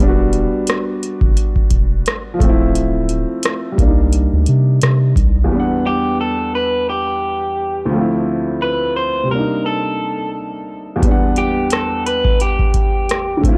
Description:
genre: lo-fi hip hop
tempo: 87 BPM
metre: 4/4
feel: swing 55% on 16ths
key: unclear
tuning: A4 = 440 Hz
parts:
  - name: dark upright piano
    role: accompaniment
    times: 0.0-13.6 s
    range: D2 to F#5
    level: -22 LUFS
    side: equal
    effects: cassette tape
  - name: soft dub sub bass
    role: bass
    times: 0.0-5.5 s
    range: D1 to C3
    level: -18 LUFS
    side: equal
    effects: transformer saturation
  - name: booming analog drum machine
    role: drums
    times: 0.3-5.3, 11.0-13.6 s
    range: hi-hat, kick drum, rim click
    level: -18 LUFS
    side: equal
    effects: overdrive
  - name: electric guitar through a small old amp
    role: melody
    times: 5.9-13.4 s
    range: G4 to C5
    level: -22 LUFS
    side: equal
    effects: spring reverb, analog delay
room: little or no reverb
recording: dry, gritty hardware recording, transformer saturation, cassette tape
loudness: -17 LUFS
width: mono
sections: 0.0-5.5 A section; 5.5-13.6 B section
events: break 0.0-5.5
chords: 0.0 Em9; 2.4 Dm9; 3.8 Cm9; 5.5 Em9; 7.9 Dm9; 9.3 Cm9; 11.0 Em9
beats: 0.68 1.37 2.06 | 2.75 3.44 4.13 4.82 | 5.51 6.20 6.89 7.58 | 8.27 8.96 9.64 10.33 | 11.02 11.71 12.40 13.09

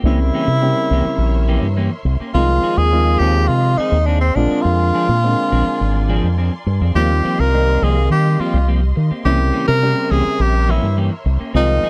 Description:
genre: jazz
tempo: 104 BPM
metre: 4/4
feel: straight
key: unclear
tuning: A4 = 439 Hz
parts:
  - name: dark chamber string section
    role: sustained chords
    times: 0.0-11.9 s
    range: Ab3 to C6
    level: -34 LUFS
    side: equal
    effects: none
  - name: clean electric guitar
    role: stabs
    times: 0.0-11.9 s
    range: E3 to Ab4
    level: -26 LUFS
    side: equal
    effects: analog chorus
  - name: fingered electric bass with an envelope filter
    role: bass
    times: 0.0-11.9 s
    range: Ab1 to Eb3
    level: -18 LUFS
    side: equal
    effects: none
  - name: clear tenor saxophone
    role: melody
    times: 0.1-11.9 s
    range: C4 to Bb4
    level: -22 LUFS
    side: equal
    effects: none
  - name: clear grand piano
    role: accompaniment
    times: 0.1-11.9 s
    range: Db3 to G4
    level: -24 LUFS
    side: equal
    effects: none
room: light reverb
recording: dry, close 1970s-style studio recording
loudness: -16 LUFS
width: mono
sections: 0.0-11.9 A section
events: none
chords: 0.1 C7b9; 2.4 Fm7/C; 4.4 Bb9; 7.0 Eb69; 9.2 C7b9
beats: | 0.05 0.63 1.20 1.78 | 2.35 2.93 3.50 4.08 | 4.65 5.23 5.80 6.38 | 6.95 7.53 8.10 8.68 | 9.25 9.82 10.40 10.97 | 11.55

